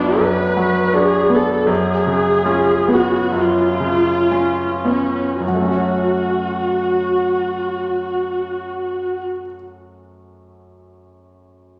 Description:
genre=classical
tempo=53-82 BPM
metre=4/4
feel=rubato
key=F# minor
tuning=A4 = 436 Hz
part: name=bright concert grand piano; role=melody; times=0.0-11.8 s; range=F#2 to C#5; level=-22 LUFS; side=equal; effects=none
part: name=warm chamber viola section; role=accompaniment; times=0.0-9.2 s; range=C#4 to B4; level=-20 LUFS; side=equal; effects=none
room=wet scoring stage reverb, RT60 1.9 s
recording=none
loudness=-18 LUFS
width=mono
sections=0.0-5.4 A section; 5.4-9.4 B section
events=slowing down 0.0-5.4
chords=0.0 Bm/F#; 1.7 C#7/F#; 5.4 F#m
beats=0.20 0.94 | 1.69 2.49 3.35 4.33 | 5.41 6.43 7.42 8.44

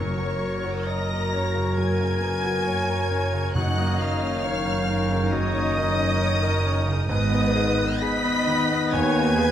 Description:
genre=cinematic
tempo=68 BPM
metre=4/4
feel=rubato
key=F# major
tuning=A4 = 440 Hz
part: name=warm symphonic violin section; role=melody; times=0.0-9.5 s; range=C#6 to B6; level=-30 LUFS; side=left 1 dB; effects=none
part: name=bright silver concert flute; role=second line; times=0.0-9.5 s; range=C#5 to B5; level=-32 LUFS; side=left 1 dB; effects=none
part: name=mellow clarinet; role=second line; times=0.0-9.5 s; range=D#4 to F#4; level=-33 LUFS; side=left 2 dB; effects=none
part: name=rich symphonic violin section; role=second line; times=0.0-9.5 s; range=C#5 to B5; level=-34 LUFS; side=left 2 dB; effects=none
part: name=warm oboe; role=second line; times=0.0-9.5 s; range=A#4 to C#5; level=-35 LUFS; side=right 2 dB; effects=none
part: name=clear grand piano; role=accompaniment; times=0.0-9.5 s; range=F#2 to C#5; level=-30 LUFS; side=equal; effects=none
part: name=rich symphonic viola section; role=accompaniment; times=0.0-9.5 s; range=B3 to D#5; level=-31 LUFS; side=left 1 dB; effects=none
part: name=warm French horn section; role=sustained chords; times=0.0-9.5 s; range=D#3 to A#4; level=-30 LUFS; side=left 5 dB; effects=none
part: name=rich studio double bass section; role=bass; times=0.0-9.5 s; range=F#1 to D#2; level=-28 LUFS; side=right 2 dB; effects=none
part: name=rich symphonic cello section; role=bass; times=0.0-9.5 s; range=D#2 to G#2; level=-29 LUFS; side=right 2 dB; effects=none
part: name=timpani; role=percussion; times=0.0-4.8 s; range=F#2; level=-30 LUFS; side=equal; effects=none
room=moderate scoring stage reverb, RT60 1.6 s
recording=none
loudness=-21 LUFS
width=side -10 dB against mid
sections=0.0-9.5 A section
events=none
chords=0.0 F#; 3.6 D#m7/F#; 7.1 G#m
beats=0.88 1.78 2.67 | 3.56 4.44 5.33 6.21 | 7.09 8.02 8.93

